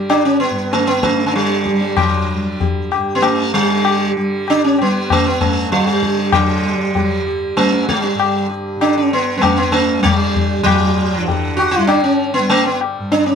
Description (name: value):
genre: indian classical, Hindustani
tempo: 97 BPM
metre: 7/4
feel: straight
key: G raga yaman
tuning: A4 = 440 Hz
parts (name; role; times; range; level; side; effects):
- sitar; melody; 0.0-13.3 s; F#3 to G4; -15 LUFS; right 1 dB; none
- tanpura; drone; 0.0-13.3 s; G2 to G3; -23 LUFS; equal; none
- tabla; percussion; 0.1-13.3 s; none; -19 LUFS; left 7 dB; none
room: light reverb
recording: close, detailed microphones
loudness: -13 LUFS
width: side -7 dB against mid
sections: 0.0-6.3 A section; 6.3-13.3 B section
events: none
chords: none